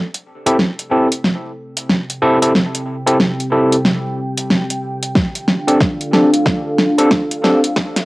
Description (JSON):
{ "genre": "glitch hop", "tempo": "92 BPM", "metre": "4/4", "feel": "swing 61% on 16ths", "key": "A minor", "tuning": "A4 = 440 Hz", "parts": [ { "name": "dark analog pad", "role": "sustained chords", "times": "1.1-8.1 s", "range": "C4 to G5", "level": "-20 LUFS", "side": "equal", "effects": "chorus, phaser, sidechain pumping, cassette tape" }, { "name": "pop drum kit", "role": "drums", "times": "0.1-8.1 s", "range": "hi-hat, snare drum", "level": "-16 LUFS", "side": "equal", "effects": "overdrive, cassette tape" }, { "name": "overdriven tine electric piano", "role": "stabs", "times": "0.5-7.6 s", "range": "C4 to A4", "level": "-16 LUFS", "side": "equal", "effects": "sidechain pumping, low-pass filter, cassette tape, tape echo" }, { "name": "electronic kick drum", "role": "drums", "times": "5.2-7.9 s", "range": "none", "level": "-18 LUFS", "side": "equal", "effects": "overdrive, cassette tape" } ], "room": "moderate studio reverb, RT60 0.6 s", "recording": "home recording on cassette, high-pass filter", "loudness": "-13 LUFS", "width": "side -21 dB against mid", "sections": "0.0-8.1 A section", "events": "build-up 0.0-8.1; drum fill 0.0-8.1; filter sweep on analog synth pad 0.0-8.1", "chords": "0.0 Am7; 5.2 F69", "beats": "0.59 1.24 1.89 | 2.55 3.20 3.85 4.50 | 5.15 5.81 6.46 7.11 | 7.76" }